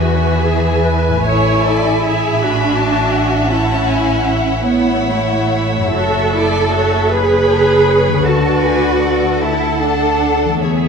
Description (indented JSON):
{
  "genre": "classical, slow romantic movement for symphony orchestra",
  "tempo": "45-55 BPM (dotted quarters)",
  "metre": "12/8",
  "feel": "rubato",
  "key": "A major",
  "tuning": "A4 = 440 Hz",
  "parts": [
    { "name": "warm studio violin section", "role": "melody", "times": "0.0-10.9 s", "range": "E5 to B5", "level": "-24 LUFS", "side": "left 3 dB", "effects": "none" },
    { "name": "warm studio violin section", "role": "second line", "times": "0.0-10.9 s", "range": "A4 to A5", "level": "-20 LUFS", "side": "left 2 dB", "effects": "none" },
    { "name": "rich studio viola section", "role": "accompaniment", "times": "0.0-10.9 s", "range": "E4 to C#5", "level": "-19 LUFS", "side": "right 1 dB", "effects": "none" },
    { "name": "concert harp", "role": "arpeggios", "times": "0.0-10.9 s", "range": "F#2 to C#5", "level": "-22 LUFS", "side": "left 8 dB", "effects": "none" },
    { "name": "dark symphonic cello section", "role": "bass", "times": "0.0-10.9 s", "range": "E3 to A4", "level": "-17 LUFS", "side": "right 2 dB", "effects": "none" },
    { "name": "rich studio double bass section", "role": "bass", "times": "0.0-10.9 s", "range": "F#1 to E2", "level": "-20 LUFS", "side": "right 3 dB", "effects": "none" }
  ],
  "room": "wet scoring stage reverb, RT60 1.8 s",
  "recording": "none",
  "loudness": "-12 LUFS",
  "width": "side -6 dB against mid",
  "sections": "0.0-10.9 A section",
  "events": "none",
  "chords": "0.0 E; 1.3 A; 6.0 F#m7; 8.3 Dmaj7",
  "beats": "| 1.25 2.40 3.50 4.66 | 5.95 7.13 8.26 9.43 | 10.63"
}